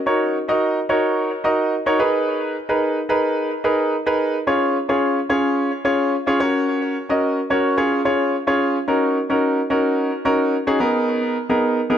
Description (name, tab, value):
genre	pop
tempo	109 BPM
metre	4/4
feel	straight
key	Eb minor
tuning	A4 = 440 Hz
part	warm grand piano	solo	0.1-12.0 s	Cb4 to Eb5	-17 LUFS	equal	digital delay
room	light reverb, studio reverb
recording	none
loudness	-17 LUFS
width	side -9 dB against mid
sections	0.0-8.9 A section; 8.9-12.0 A section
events	drop 0.0-8.9, 8.9-12.0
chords	0.1 Ebm7; 2.0 Abmadd9; 4.5 Db; 6.4 Gb; 7.8 Db; 8.9 Ebm7; 10.8 Abmadd9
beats	| 0.07 0.62 1.17 1.72 | 2.27 2.82 3.37 3.92 | 4.47 5.02 5.57 6.12 | 6.67 7.22 7.77 8.32 | 8.87 9.43 9.97 10.53 | 11.08 11.63